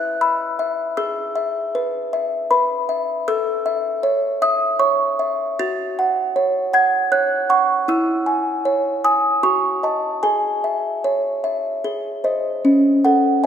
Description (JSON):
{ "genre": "classical, lullaby for music box", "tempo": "78 BPM", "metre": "3/4", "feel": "rubato", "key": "C# minor", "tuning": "A4 = 441 Hz", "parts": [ { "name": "music box", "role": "solo", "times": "0.0-13.5 s", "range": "C#4 to A6", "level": "-17 LUFS", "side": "equal", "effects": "none" } ], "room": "wet concert hall reverb, RT60 2.4 s", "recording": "recorded in a church or concert hall", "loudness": "-17 LUFS", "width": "side -8 dB against mid", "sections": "0.0-12.7 A section", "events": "none", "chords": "0.0 E5; 1.0 E/G#; 3.3 A; 5.6 F#m; 7.9 C#m/E; 9.4 D#m7b5/F#; 10.2 C#m/G#; 11.9 G#; 12.7 N.C.", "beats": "0.21 | 0.98 1.75 2.52 | 3.28 4.04 4.81 | 5.59 6.36 7.13 | 7.90 8.66 9.44 | 10.24 11.05 11.85 | 12.65 13.43" }